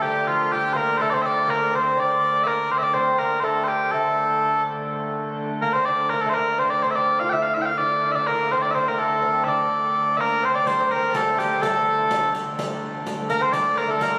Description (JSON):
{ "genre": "medieval dance", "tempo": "124 BPM", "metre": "2/4", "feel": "straight", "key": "D minor", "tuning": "A4 = 438 Hz", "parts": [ { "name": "mellow small bagpipes", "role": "melody", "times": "0.0-14.2 s", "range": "F4 to G5", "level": "-23 LUFS", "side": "equal", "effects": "none" }, { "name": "bright shawm", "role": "second line", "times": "0.0-2.7, 10.2-14.1 s", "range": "F4 to D5", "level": "-37 LUFS", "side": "equal", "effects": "none" }, { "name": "lute", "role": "second line", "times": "0.0-14.2 s", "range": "F3 to F4", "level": "-32 LUFS", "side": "equal", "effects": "none" }, { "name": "dark hurdy-gurdy", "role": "drone", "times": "0.0-14.2 s", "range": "D3 to A3", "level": "-34 LUFS", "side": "equal", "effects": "none" }, { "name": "riq", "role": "percussion", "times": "10.7-14.2 s", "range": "none", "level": "-35 LUFS", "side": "equal", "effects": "none" } ], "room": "wet cathedral reverb, RT60 6.0 s", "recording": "recorded on a phone in the room, studio reverb, compression", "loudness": "-22 LUFS", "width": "mono", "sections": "0.0-3.0 A section; 3.0-10.7 B section; 10.7-14.2 B section", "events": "speeding up 0.0-14.2", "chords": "none" }